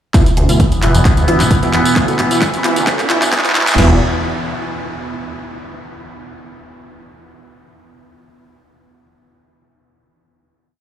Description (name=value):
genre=driving peak-time techno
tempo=132 BPM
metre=4/4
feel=straight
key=unclear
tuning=A4 = 441 Hz
part: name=overdriven acid bass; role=riff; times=0.1-4.0 s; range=E1 to B2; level=-20 LUFS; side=equal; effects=distortion, ensemble chorus, sidechain pumping, ping-pong delay
part: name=rave stab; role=stabs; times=0.1-4.0 s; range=B2 to E4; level=-20 LUFS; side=right 2 dB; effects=chorus, built-in reverb, sidechain pumping, ping-pong delay
part: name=overtone-sweeping drone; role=drone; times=0.5-3.8 s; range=E3 to B3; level=-20 LUFS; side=equal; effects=chorus, built-in reverb, sidechain pumping
part: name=techno drum kit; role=drums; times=0.1-3.9 s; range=crash cymbal, kick drum, snare drum, toms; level=-14 LUFS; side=equal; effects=none
part: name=techno drum kit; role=drums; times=0.1-3.8 s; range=handclaps, hi-hat, tambourine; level=-19 LUFS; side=right 1 dB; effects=none
part: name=riser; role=sound effects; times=1.2-3.8 s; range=none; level=-27 LUFS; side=right 1 dB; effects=none
part: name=warm sub bass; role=bass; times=0.4-4.0 s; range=E1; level=-21 LUFS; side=equal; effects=overdrive, sidechain pumping, low-pass filter
room=moderate huge ambient reverb, RT60 7.3 s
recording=played on a big sound system in a bare room, large studio reverb, high-pass filter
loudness=-11 LUFS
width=side -10 dB against mid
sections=0.1-3.8 build; 3.8-5.6 final chord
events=build-up 0.1-3.8; drum fill 0.1-3.8; filter sweep on acid bass 0.1-3.8; filter sweep on synth stab 0.1-3.8; filter sweep 0.1-3.8; riser 1.2-3.8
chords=0.1 E5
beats=| 0.14 0.60 1.05 1.51 | 1.96 2.42 2.87 3.33 | 3.78